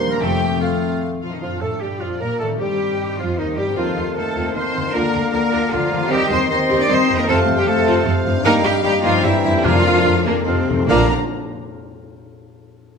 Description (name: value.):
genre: classical, dramatic, fast romantic movement for symphony orchestra.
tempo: 152 BPM.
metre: 3/4.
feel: straight.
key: Bb major.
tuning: A4 = 442 Hz.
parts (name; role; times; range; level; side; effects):
dark symphonic violin section; melody; 0.0-11.1 s; A4 to C6; -30 LUFS; left 4 dB; none.
mellow clarinet; second line; 0.0-11.1 s; C4 to Eb5; -29 LUFS; left 1 dB; none.
warm oboe; second line; 0.0-11.1 s; Eb4 to G5; -28 LUFS; right 2 dB; none.
mellow bassoon; accompaniment; 0.0-11.1 s; C3 to C4; -26 LUFS; right 1 dB; none.
mellow French horn section; sustained chords; 0.0-11.1 s; Bb2 to D4; -24 LUFS; left 4 dB; none.
concert harp; arpeggios; 0.0-11.1 s; F2 to F5; -25 LUFS; left 8 dB; none.
concert flute; second line; 0.1-11.1 s; Eb4 to Bb5; -32 LUFS; equal; none.
warm chamber violin section; second line; 0.1-11.1 s; F4 to D6; -27 LUFS; left 1 dB; none.
rich symphonic viola section; accompaniment; 0.2-11.1 s; D3 to A4; -25 LUFS; right 2 dB; none.
rich studio double bass section; bass; 0.2-11.1 s; F1 to Bb2; -26 LUFS; right 4 dB; none.
rich symphonic cello section; bass; 0.2-11.1 s; F2 to D5; -22 LUFS; right 2 dB; none.
timpani; percussion; 9.7-11.1 s; F2 to Bb2; -25 LUFS; equal; none.
room: wet recital hall reverb, RT60 1.6 s.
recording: none.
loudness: -16 LUFS.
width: side -6 dB against mid.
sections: 0.0-1.4 A section; 1.4-10.9 B section; 10.9-12.1 C section.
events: timpani fill 10.5-10.9.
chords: 0.2 F; 1.4 Bb/F; 2.6 Cm/G; 3.8 F7/Eb; 4.9 Bb/D; 6.1 Cm/Eb; 7.3 F; 8.5 Eb/G; 9.2 C7/G; 9.6 Bb/F; 10.5 F7; 10.9 Bb.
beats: | 0.21 0.62 1.02 | 1.42 1.81 2.21 | 2.60 3.00 3.39 | 3.78 4.17 4.56 | 4.95 5.34 5.72 | 6.11 6.50 6.89 | 7.28 7.67 8.06 | 8.45 8.85 9.25 | 9.65 10.06 10.47 | 10.89.